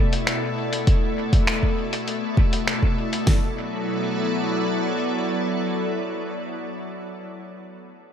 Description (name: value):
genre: ambient dub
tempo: 100 BPM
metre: 4/4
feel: straight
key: unclear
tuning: A4 = 441 Hz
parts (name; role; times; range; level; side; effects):
- soft additive organ-like pad; sustained chords; 0.0-6.4 s; B2 to D5; -24 LUFS; left 1 dB; ensemble chorus, built-in reverb
- lo-fi sampler-style drum kit; drums; 0.1-3.2 s; finger snaps, hi-hat; -27 LUFS; equal; dub echo
- deep house drum kit; drums; 0.9-3.4 s; hi-hat, kick drum, snare drum; -19 LUFS; equal; none
room: light reverb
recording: none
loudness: -21 LUFS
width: side -8 dB against mid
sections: 0.0-3.3 A section; 3.3-5.7 B section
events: none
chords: 0.0 D5; 3.3 E5